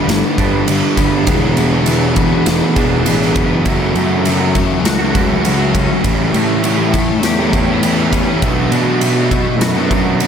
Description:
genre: rock, shoegaze and dream pop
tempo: 101 BPM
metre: 4/4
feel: straight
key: unclear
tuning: A4 = 439 Hz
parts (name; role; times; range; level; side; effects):
- twangy electric guitar; arpeggios; 0.0-10.3 s; E3 to G4; -25 LUFS; left 6 dB; ensemble chorus, ping-pong delay
- raw garage guitar; riff; 0.0-10.3 s; E2 to G#4; -17 LUFS; right 7 dB; overdrive, reverse reverb
- thick fuzz guitar; riff; 0.0-10.3 s; E2 to B3; -18 LUFS; left 6 dB; distortion, ensemble chorus
- fuzz picked electric bass; bass; 0.1-10.3 s; E1 to B2; -18 LUFS; equal; overdrive
- big rock drum kit; drums; 0.1-10.3 s; kick drum, ride cymbal, snare drum; -19 LUFS; equal; none
room: wet cathedral reverb, RT60 5.3 s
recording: dreamy mix soaked in reverb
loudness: -12 LUFS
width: side -8 dB against mid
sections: 0.0-3.7 A section; 3.7-10.3 B section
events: none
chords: 0.0 G; 1.3 E7sus2; 3.7 F#m7; 6.0 A7; 8.4 Bm7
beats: 0.09 0.68 | 1.28 1.87 2.47 3.06 | 3.66 4.25 4.85 5.45 | 6.04 6.64 7.23 7.83 | 8.42 9.02 9.61 10.21

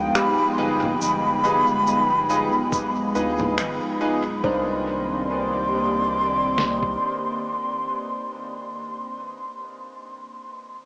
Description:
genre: ambient dub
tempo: 70 BPM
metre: 4/4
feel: swing 57% on 16ths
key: C minor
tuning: A4 = 440 Hz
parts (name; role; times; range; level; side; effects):
- concert flute; melody; 0.0-8.6 s; G5 to C6; -24 LUFS; equal; dub echo
- airy breathy pad; sustained chords; 0.0-8.6 s; Eb3 to D5; -28 LUFS; equal; chorus, phaser
- soft synth bell; arpeggios; 0.0-10.4 s; G4 to F5; -32 LUFS; equal; chorus, phaser, dub echo
- warm sub bass; bass; 0.0-7.0 s; D1 to D2; -34 LUFS; equal; tube saturation
- electronic finger snaps, cabasa and congas; drums; 0.2-3.8 s; none; -29 LUFS; equal; dub echo
- bright upright piano; stabs; 0.6-8.8 s; D4 to B4; -28 LUFS; equal; analog chorus, dub echo
- lo-fi sampler-style drum kit; drums; 2.7-7.0 s; kick drum, snare drum; -27 LUFS; equal; none
room: wet huge ambient reverb, RT60 7.2 s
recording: dreamy mix soaked in reverb, small speaker sound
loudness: -20 LUFS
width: side -30 dB against mid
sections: 0.0-4.4 A section; 4.4-7.9 B section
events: none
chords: 0.0 G7b9b13; 4.4 Cm9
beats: 0.15 | 1.01 1.87 2.73 3.58 | 4.44 5.30 6.15 7.01

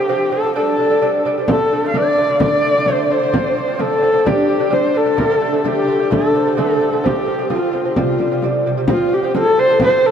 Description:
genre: mongolian traditional, Mongolian folk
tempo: 130 BPM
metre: 4/4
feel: straight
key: F gong mode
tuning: A4 = 440 Hz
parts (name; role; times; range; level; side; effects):
- rich horsehead fiddle; melody; 0.0-10.1 s; F4 to F5; -17 LUFS; equal; none
- reedy large dizi; second line; 0.0-10.1 s; F4 to F5; -21 LUFS; left 2 dB; none
- lute; arpeggios; 0.0-10.1 s; C3 to D4; -20 LUFS; right 1 dB; none
- frame drum; percussion; 1.5-9.9 s; none; -23 LUFS; equal; none
room: wet huge ambient reverb, RT60 7.8 s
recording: heard from further back in the room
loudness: -14 LUFS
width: side -8 dB against mid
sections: 0.0-8.9 A section; 8.9-10.1 B section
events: none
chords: 0.0 F5; 0.6 G5; 1.5 D5; 3.3 F5; 4.3 G5; 5.2 D5; 7.0 F5; 8.0 C5; 8.9 F5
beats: 0.09 0.56 1.02 | 1.48 1.95 2.41 2.87 | 3.33 3.80 4.26 4.72 | 5.19 5.65 6.11 6.57 | 7.04 7.50 7.96 8.42 | 8.89 9.35 9.81

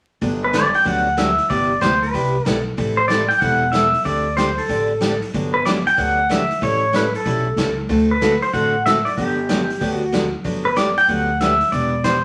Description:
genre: country, western swing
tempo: 188 BPM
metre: 4/4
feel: swing 64% on 8ths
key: G major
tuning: A4 = 440 Hz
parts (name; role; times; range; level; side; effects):
- picked steel-string acoustic guitar; accompaniment; 0.2-12.2 s; C3 to A4; -25 LUFS; equal; none
- upright bass; bass; 0.2-12.2 s; E1 to D2; -27 LUFS; equal; none
- swinging big-band drum kit; drums; 0.2-12.1 s; hi-hat, kick drum, snare drum; -29 LUFS; equal; none
- pedal steel guitar; melody; 0.4-12.2 s; G4 to G5; -20 LUFS; equal; none
room: wet studio reverb, RT60 0.7 s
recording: vinyl crackle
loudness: -18 LUFS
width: mono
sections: 0.2-12.2 A section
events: none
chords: 0.2 Gmaj7; 1.5 Cmaj9/G; 2.8 Am7; 4.1 D7sus4; 5.3 Gmaj7; 6.6 A7; 7.9 D7; 9.2 Gmaj7; 11.7 Em7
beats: | 0.22 0.54 0.86 1.18 | 1.50 1.82 2.14 2.46 | 2.78 3.10 3.42 3.74 | 4.06 4.38 4.70 5.01 | 5.33 5.65 5.97 6.29 | 6.61 6.93 7.25 7.57 | 7.89 8.21 8.53 8.85 | 9.17 9.49 9.80 10.12 | 10.44 10.76 11.08 11.40 | 11.72 12.04

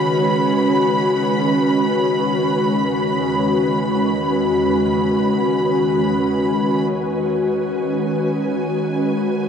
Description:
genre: ambient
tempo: free time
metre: none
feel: none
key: C# minor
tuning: A4 = 440 Hz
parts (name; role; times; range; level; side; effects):
- ethereal airy pad; sustained chords; 0.0-9.5 s; E2 to B4; -17 LUFS; left 1 dB; ensemble chorus, built-in reverb, shimmer reverb
- analog drone; drone; 0.0-7.0 s; C#3 to C#4; -28 LUFS; right 1 dB; chorus
- clear studio violin section; texture; 0.0-9.5 s; G#5 to B5; -24 LUFS; right 1 dB; shimmer reverb
room: wet plate reverb, RT60 2.5 s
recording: dreamy mix soaked in reverb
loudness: -16 LUFS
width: side -7 dB against mid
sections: 0.0-6.9 A section; 6.9-9.5 A section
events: fade-in on violin section 6.9-9.5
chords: 0.0 C#sus2; 1.6 E6; 6.9 C#sus2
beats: free time

